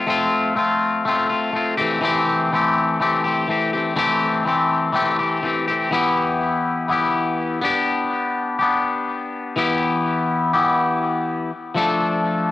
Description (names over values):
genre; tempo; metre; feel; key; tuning
rock; 123 BPM; 4/4; straight; unclear; A4 = 437 Hz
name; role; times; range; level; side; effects
twangy electric guitar; solo; 0.0-12.5 s; E3 to A4; -18 LUFS; left 2 dB; phaser, cassette tape, tape echo
room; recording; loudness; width
light reverb; home recording on cassette; -18 LUFS; side -15 dB against mid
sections
0.0-5.9 A section; 5.9-12.5 B section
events
none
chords
0.0 F; 1.8 C6; 5.9 Em; 7.6 G; 9.6 Em; 11.8 Dm